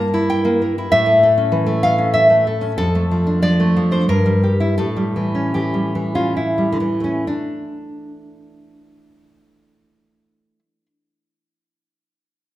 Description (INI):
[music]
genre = romantic piece for solo classical guitar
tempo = 64-99 BPM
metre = 3/4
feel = rubato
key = D minor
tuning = A4 = 440 Hz
[part]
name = nylon-string guitar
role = solo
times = 0.0-10.9 s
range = F2 to A5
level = -15 LUFS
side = equal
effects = none
[sound]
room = wet recital hall reverb, RT60 1.4 s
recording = recorded in a church or concert hall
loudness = -15 LUFS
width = side -14 dB against mid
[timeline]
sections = 0.0-7.3 A section; 7.3-12.6 B section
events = slowing down 1.8-7.3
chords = 0.0 Edim/G; 0.9 A; 2.8 Dm/F; 4.1 Edim/G; 4.8 A7; 7.3 D5